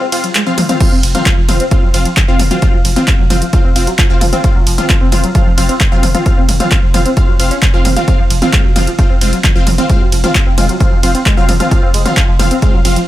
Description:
driving peak-time techno; 132 BPM; 4/4; straight; A4 = 439 Hz
overdriven synth lead; riff; 0.0-13.0 s; F3 to F4; -19 LUFS; equal; lush chorus, sidechain pumping, ping-pong delay
supersaw stab; stabs; 0.1-13.0 s; C4 to F5; -18 LUFS; left 2 dB; cassette tape, sidechain pumping, tape echo
punchy analog drum machine; drums; 0.1-13.1 s; crash cymbal, handclaps, hi-hat, ride cymbal, toms; -17 LUFS; equal
electronic kick drum; drums; 0.8-12.7 s; -12 LUFS; equal
saturated sub bass; bass; 0.9-13.0 s; F1; -16 LUFS; equal; tube saturation, sidechain pumping, low-pass filter
little or no reverb; -9 LUFS; side -14 dB against mid
0.0-13.1 A section
break 0.0-0.8; drum fill 0.6
0.0 F5

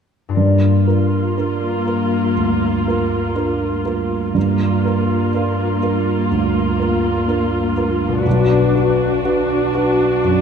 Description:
cinematic; 61 BPM; 4/4; rubato; G minor; A4 = 440 Hz
concert harp; arpeggios; 0.3-10.4 s; G2 to B4; -20 LUFS; left 5 dB
dark symphonic viola section; accompaniment; 0.4-10.4 s; Bb3 to F#4; -20 LUFS; left 3 dB
warm baby grand piano; accompaniment; 0.4-10.4 s; B1 to B4; -18 LUFS; right 4 dB
wet scoring stage reverb, RT60 2.0 s; -15 LUFS; side -7 dB against mid
0.4-10.4 A section
0.4 Gm7; 8.3 Bm

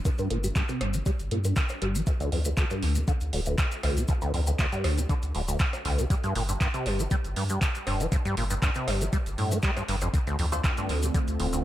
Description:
acid house; 119 BPM; 4/4; straight; D minor; A4 = 436 Hz
deep acid bass; riff; 0.1-11.6 s; D2 to Bb3; -30 LUFS; equal; analog chorus, sidechain pumping, dub echo
booming analog drum machine; drums; 0.1-11.6 s; handclaps, hi-hat, rim click; -34 LUFS; right 1 dB; dub echo
electronic kick drum; drums; 0.1-11.3 s; -26 LUFS; equal
maracas; percussion; 0.1-11.6 s; -40 LUFS; left 3 dB
warm sub bass; bass; 0.3-11.6 s; D1 to G2; -29 LUFS; equal; sidechain pumping
warbly tape-like pad; sustained chords; 10.5-11.6 s; D3 to F4; -34 LUFS; right 2 dB; chorus, built-in reverb, phaser, sidechain pumping
filtered dub chord stab; stabs; 10.5-10.6 s; D4 to C5; -37 LUFS; left 1 dB
light reverb; echo-heavy mix; -25 LUFS; side -13 dB against mid
0.0-11.6 A section
filter sweep on acid bass 0.0-11.6
0.0 N.C.; 2.1 D7(no3); 6.1 N.C.; 10.1 Dm7

